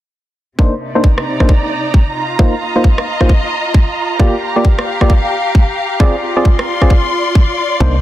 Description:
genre	UK garage, two-step garage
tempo	133 BPM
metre	4/4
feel	swing 62% on 16ths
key	C minor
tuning	A4 = 440 Hz
part	percussive organ stab	stabs	0.6-8.0 s	Bb3 to D5	-17 LUFS	equal	chorus, digital delay
part	electronic kick drum	drums	0.6-7.9 s	none	-10 LUFS	equal	overdrive, small room ambience
part	dark studio string section	texture	0.6-8.0 s	C3 to C6	-18 LUFS	equal	sidechain pumping
part	electronic rim click	drums	1.2-6.9 s	none	-21 LUFS	right 1 dB	overdrive, low-pass filter on snare, small room ambience
part	organ-like FM bass	bass	7.8-8.0 s	C2	-12 LUFS	equal	none
room	light reverb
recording	dense, heavily limited modern master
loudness	-11 LUFS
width	side -14 dB against mid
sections	0.6-8.0 A section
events	none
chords	0.6 Cm9; 2.2 F7sus4; 4.2 Gm7; 6.0 Dm7b5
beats	| 0.59 1.04 1.49 1.94 | 2.39 2.84 3.29 3.75 | 4.20 4.65 5.10 5.55 | 6.00 6.45 6.90 7.35 | 7.80

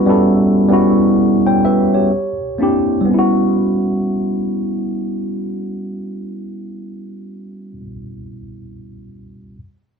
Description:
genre	R&B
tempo	60-66 BPM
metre	4/4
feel	swing 62% on 16ths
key	E dorian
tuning	A4 = 440 Hz
part	tine electric piano	solo	0.0-9.6 s	G3 to G5	-15 LUFS	equal	wide subtle chorus
room	wet studio reverb, RT60 0.9 s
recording	none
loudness	-13 LUFS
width	side -6 dB against mid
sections	0.0-3.1 A section; 3.1-7.1 B section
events	slowing down 0.0-3.1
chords	0.0 Em69; 2.1 C9; 3.1 Em69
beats	0.23 1.15 2.10 | 3.08 4.07 5.07 6.06

